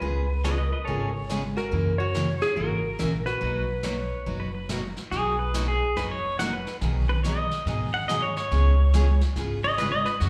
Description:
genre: country, western swing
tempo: 141 BPM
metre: 4/4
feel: swing 64% on 8ths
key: B major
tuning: A4 = 440 Hz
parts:
  - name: clean lap steel guitar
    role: melody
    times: 0.0-4.6 s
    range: G#4 to C#5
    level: -32 LUFS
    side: equal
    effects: slapback echo
  - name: archtop guitar, miked and amplified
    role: second line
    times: 0.0-4.7 s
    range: E4 to F#4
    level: -40 LUFS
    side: equal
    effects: slapback echo
  - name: picked steel-string acoustic guitar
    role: accompaniment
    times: 0.0-10.3 s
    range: B2 to G#4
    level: -34 LUFS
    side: equal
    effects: slapback echo
  - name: upright bass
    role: bass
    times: 0.0-10.3 s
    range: F#1 to G#2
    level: -28 LUFS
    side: equal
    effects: none
  - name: jazz brush drum kit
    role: drums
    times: 0.0-10.3 s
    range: brushed snare drum, hi-hat, snare drum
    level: -41 LUFS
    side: equal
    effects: none
  - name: pedal steel guitar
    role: second line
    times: 0.4-10.3 s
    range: F#4 to F#5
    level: -30 LUFS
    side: equal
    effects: slapback echo
room: light reverb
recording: live gig heard through the venue's PA, club reverb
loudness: -26 LUFS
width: mono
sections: 0.0-5.1 A section; 5.1-10.3 B section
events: pedal steel guitar solo 5.1-10.3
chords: 0.0 C#7; 1.7 F#7; 3.4 Bmaj7; 6.8 G#m7/B; 8.5 C#7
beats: | 0.02 0.45 0.87 1.29 | 1.72 2.14 2.57 2.99 | 3.42 3.84 4.27 4.69 | 5.12 5.54 5.97 6.39 | 6.82 7.24 7.66 8.09 | 8.51 8.94 9.36 9.79 | 10.21

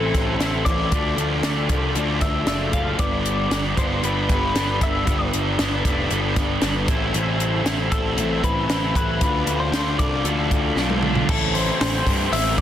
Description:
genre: indie rock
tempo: 116 BPM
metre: 4/4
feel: straight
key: A minor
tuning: A4 = 440 Hz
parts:
  - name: twelve-string electric guitar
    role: melody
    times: 0.0-12.6 s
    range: A4 to F5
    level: -27 LUFS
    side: left 3 dB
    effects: spring reverb, analog delay
  - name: overdriven combo organ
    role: sustained chords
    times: 0.0-11.3 s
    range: C4 to E6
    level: -35 LUFS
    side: right 2 dB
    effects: none
  - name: biting overdriven guitar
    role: riff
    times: 0.0-12.6 s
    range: E3 to E4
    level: -26 LUFS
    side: right 8 dB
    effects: ensemble chorus
  - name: raw garage guitar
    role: riff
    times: 0.0-12.6 s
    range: G2 to F4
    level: -26 LUFS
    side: left 8 dB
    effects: overdrive
  - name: fuzz picked electric bass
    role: bass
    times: 0.0-12.6 s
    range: F1 to G2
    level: -25 LUFS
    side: equal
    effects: overdrive
  - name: compact cocktail drum kit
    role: drums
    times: 0.1-12.6 s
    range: crash cymbal, hi-hat, kick drum, snare drum, toms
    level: -24 LUFS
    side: equal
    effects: none
room: little or no reverb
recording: dense, heavily limited modern master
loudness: -19 LUFS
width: side -10 dB against mid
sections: 0.0-11.3 A section; 11.3-12.6 B section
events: drum fill 10.8-11.3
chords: 0.0 Am; 0.9 Dm; 3.0 G; 6.9 Am; 9.2 Dm; 11.3 Am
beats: 0.41 | 0.93 1.45 1.96 2.48 | 3.00 3.52 4.04 4.56 | 5.08 5.59 6.11 6.63 | 7.15 7.67 8.19 8.70 | 9.22 9.74 10.26 10.77 | 11.29 11.81 12.32

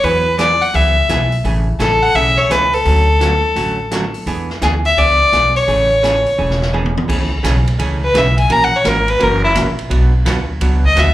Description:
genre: country, western swing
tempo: 170 BPM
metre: 4/4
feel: swing 65% on 8ths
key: A major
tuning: A4 = 441 Hz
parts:
  - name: rich fiddle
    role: melody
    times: 0.0-11.1 s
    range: E4 to A#5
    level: -14 LUFS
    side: left 1 dB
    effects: plate reverb, slapback echo
  - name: archtop guitar, miked and amplified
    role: accompaniment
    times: 0.0-11.1 s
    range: B2 to A#4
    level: -22 LUFS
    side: right 3 dB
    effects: plate reverb, slapback echo
  - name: upright bass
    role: bass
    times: 0.0-11.1 s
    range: E1 to E2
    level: -17 LUFS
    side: equal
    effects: none
  - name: swinging big-band drum kit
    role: drums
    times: 0.0-11.1 s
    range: crash cymbal, hi-hat, kick drum, ride cymbal, snare drum, toms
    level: -24 LUFS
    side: equal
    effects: none
room: moderate club reverb, RT60 0.6 s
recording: live gig heard through the venue's PA, club reverb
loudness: -12 LUFS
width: side -14 dB against mid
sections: 0.0-7.1 A section; 7.1-11.1 B section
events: drum fill 6.4-7.1; fiddle solo 7.1-11.1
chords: 0.0 Eadd9; 1.4 Amaj7; 2.9 Dmaj7; 4.3 E7; 5.7 Amaj7; 8.5 F#7; 9.9 Bm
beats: | 0.04 0.39 0.74 1.09 | 1.45 1.80 2.15 2.50 | 2.86 3.21 3.56 3.92 | 4.27 4.62 4.97 5.33 | 5.68 6.03 6.39 6.74 | 7.09 7.44 7.80 8.15 | 8.50 8.85 9.21 9.56 | 9.91 10.26 10.62 10.97

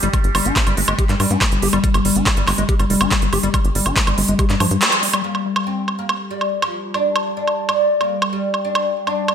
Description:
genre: psychedelic trance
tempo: 141 BPM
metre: 4/4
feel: straight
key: G phrygian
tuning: A4 = 442 Hz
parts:
  - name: evolving wavetable pad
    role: sustained chords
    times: 0.0-9.3 s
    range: G3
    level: -24 LUFS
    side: left 3 dB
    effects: phaser, built-in reverb, sidechain pumping
  - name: liquid acid bass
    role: riff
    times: 0.0-5.2 s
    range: F3 to G4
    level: -24 LUFS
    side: left 1 dB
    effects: chorus, auto-pan, sidechain pumping, digital delay
  - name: tight sequencer bass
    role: bass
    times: 0.0-4.8 s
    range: F1 to G2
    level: -21 LUFS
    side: equal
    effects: none
  - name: big-room dance drum kit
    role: drums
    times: 0.0-9.3 s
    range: handclaps, hi-hat, woodblock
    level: -20 LUFS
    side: right 2 dB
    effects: overdrive
  - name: electronic kick drum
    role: drums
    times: 0.1-4.5 s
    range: none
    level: -19 LUFS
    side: equal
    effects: none
  - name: oud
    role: melody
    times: 5.2-9.2 s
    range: F3 to D4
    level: -20 LUFS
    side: equal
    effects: phaser, sidechain pumping, digital delay
room: moderate digital room reverb, RT60 1.2 s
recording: none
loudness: -16 LUFS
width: side -8 dB against mid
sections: 0.0-5.2 A section; 5.2-9.3 B section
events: band accent 4.8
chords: 0.0 G5; 5.2 N.C.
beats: | 0.14 0.56 0.99 1.41 | 1.84 2.26 2.69 3.11 | 3.54 3.96 4.39 4.82 | 5.24 5.67 6.09 6.52 | 6.94 7.37 7.79 8.22 | 8.65 9.07

